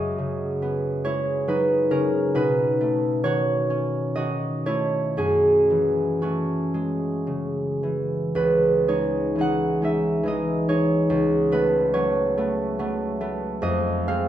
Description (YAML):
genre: classical, solo harp piece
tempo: 51-74 BPM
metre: 3/4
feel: rubato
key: F# dorian, C# minor from 8.4 s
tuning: A4 = 440 Hz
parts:
  - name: concert harp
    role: solo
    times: 0.0-14.3 s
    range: C#2 to F#5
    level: -20 LUFS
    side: equal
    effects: none
room: moderate recital hall reverb, RT60 1.5 s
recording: minimal, uncompressed stereo recording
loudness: -20 LUFS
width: side -11 dB against mid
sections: 0.0-8.4 A section; 8.4-14.3 B section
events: none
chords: 0.0 G#m7/F#; 2.3 B9; 5.2 F#m9; 8.4 C#madd9; 11.1 A69/C#; 13.6 Fm